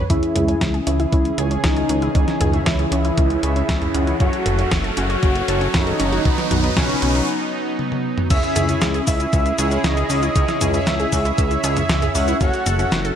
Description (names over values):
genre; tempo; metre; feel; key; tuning
synthwave; 117 BPM; 4/4; straight; C# minor; A4 = 440 Hz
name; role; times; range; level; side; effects
wide unison pluck; arpeggios; 0.0-13.1 s; B3 to A4; -28 LUFS; left 1 dB; tape echo
chorused synth bass; bass; 0.0-13.1 s; F#1 to C#2; -22 LUFS; equal; tube saturation
wide unison lead; melody; 0.1-13.1 s; C#4 to F#5; -23 LUFS; equal; ping-pong delay
phased analog pad; sustained chords; 0.1-13.2 s; C#3 to G#4; -26 LUFS; left 1 dB; phaser, chorus
analog synth brass; stabs; 0.1-12.9 s; D#4 to G#5; -28 LUFS; right 3 dB; chorus
clean 12-bit digital drum machine; drums; 0.1-13.2 s; crash cymbal, hi-hat, shaker, snare drum, toms; -24 LUFS; equal; none
electronic kick drum; drums; 0.1-12.5 s; none; -20 LUFS; equal; none
riser; sound effects; 2.1-7.3 s; none; -30 LUFS; equal; none
room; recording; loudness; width
light reverb, digital ambience; none; -16 LUFS; side -9 dB against mid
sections
0.1-8.3 A section; 8.3-13.2 B section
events
filter sweep on synth arpeggio sound 0.1-8.3; filter sweep on analog polysynth 0.1-8.3; riser 2.1-7.3; break 7.3-8.3; drum fill 7.8-8.3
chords
0.1 C#m; 4.2 F#m; 6.3 B; 8.3 C#m; 12.4 F#m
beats
| 0.10 0.61 1.12 1.64 | 2.15 2.66 3.18 3.69 | 4.20 4.71 5.23 5.74 | 6.25 6.77 7.28 7.79 | 8.30 8.82 9.33 9.84 | 10.36 10.87 11.38 11.89 | 12.41 12.92